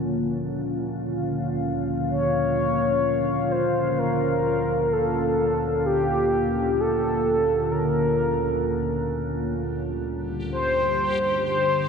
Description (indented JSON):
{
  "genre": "dark ambient drone",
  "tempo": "free time",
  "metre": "none",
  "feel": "none",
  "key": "unclear",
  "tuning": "A4 = 441 Hz",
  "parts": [
    { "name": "deep dark ambient pad", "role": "sustained chords", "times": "0.0-11.9 s", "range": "G3 to F5", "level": "-26 LUFS", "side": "equal", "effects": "chorus, built-in reverb" },
    { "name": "organ-like drone", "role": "drone", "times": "0.0-11.9 s", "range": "D2 to D3", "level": "-30 LUFS", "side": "equal", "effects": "ensemble chorus, built-in reverb" },
    { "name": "mellow horn-like synth lead", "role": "melody", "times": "2.1-11.9 s", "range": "G4 to Db5", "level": "-24 LUFS", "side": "left 1 dB", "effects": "chorus, ping-pong delay" },
    { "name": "backwards swelling texture", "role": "texture", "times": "9.9-11.9 s", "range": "G4", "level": "-35 LUFS", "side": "left 4 dB", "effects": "built-in reverb" }
  ],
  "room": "wet cathedral reverb, RT60 6.2 s",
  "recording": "none",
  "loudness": "-21 LUFS",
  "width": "side -6 dB against mid",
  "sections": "0.0-11.9 A section",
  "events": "fade-in on synth drone 0.0-11.9",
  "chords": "0.0 Bbm; 9.6 G5"
}